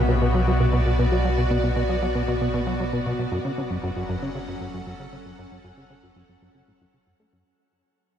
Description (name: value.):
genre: ambient, sequencer-driven space music.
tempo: 116 BPM.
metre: 4/4.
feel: straight.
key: unclear.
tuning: A4 = 440 Hz.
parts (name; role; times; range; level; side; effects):
evolving wavetable pad; sustained chords; 0.0-7.5 s; B2 to F#5; -27 LUFS; equal; ensemble chorus, built-in reverb.
plucky analog bass; riff; 0.0-7.4 s; F#2 to A3; -26 LUFS; equal; tape echo.
warm sub bass; bass; 0.0-7.4 s; F#1 to B1; -26 LUFS; equal; none.
room: moderate shimmer reverb, RT60 8.8 s.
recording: cassette tape.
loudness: -21 LUFS.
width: side -9 dB against mid.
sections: 0.0-7.5 A section.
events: fade-out on sub bass 0.0-7.5; fade-out 0.0-7.5; filter sweep on analog synth bass 0.0-7.5.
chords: 0.0 Bm; 3.3 F#m.